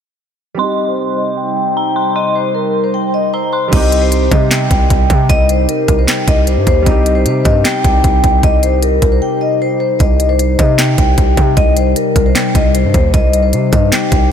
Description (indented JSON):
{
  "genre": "hip hop, trap",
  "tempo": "153 BPM",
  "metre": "4/4",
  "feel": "half-time",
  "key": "C minor",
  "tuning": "A4 = 439 Hz",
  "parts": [
    { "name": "felt-muted upright piano", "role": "accompaniment", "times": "0.5-10.0 s", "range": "G3 to G4", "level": "-22 LUFS", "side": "right 4 dB", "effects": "low-pass filter" },
    { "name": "vibraphone with medium mallets", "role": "melody", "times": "0.6-14.3 s", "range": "Bb4 to G5", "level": "-16 LUFS", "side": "left 3 dB", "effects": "low-pass filter" },
    { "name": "dark detuned synth bell", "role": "second line", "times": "0.6-3.7 s", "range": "Bb5 to C6", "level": "-22 LUFS", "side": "right 2 dB", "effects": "chorus, phaser, ping-pong delay" },
    { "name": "warbly tape-like pad", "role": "sustained chords", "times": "0.6-14.3 s", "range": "C3 to C5", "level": "-19 LUFS", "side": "left 2 dB", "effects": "chorus, built-in reverb, low-pass filter" },
    { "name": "distorted 808-style bass", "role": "bass", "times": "3.7-14.3 s", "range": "C2 to C3", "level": "-14 LUFS", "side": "right 1 dB", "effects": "distortion" },
    { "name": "trap drum kit", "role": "drums", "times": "3.7-14.2 s", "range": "crash cymbal, handclaps, hi-hat, kick drum, rim click, snare drum", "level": "-14 LUFS", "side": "right 1 dB", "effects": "none" }
  ],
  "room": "moderate huge ambient reverb, RT60 4.2 s",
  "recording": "dreamy mix soaked in reverb",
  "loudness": "-10 LUFS",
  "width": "side -8 dB against mid",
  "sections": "0.6-3.7 A section; 3.7-14.3 B section",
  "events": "filter sweep 0.6-3.7; break 9.2-10.0",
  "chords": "0.6 Cm",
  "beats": "| 0.59 0.98 1.37 1.77 | 2.16 2.55 2.94 3.33 | 3.73 4.12 4.51 4.90 | 5.29 5.69 6.08 6.47 | 6.86 7.26 7.65 8.04 | 8.43 8.82 9.22 9.61 | 10.00 10.39 10.79 11.18 | 11.57 11.96 12.35 12.75 | 13.14 13.53 13.92 14.31"
}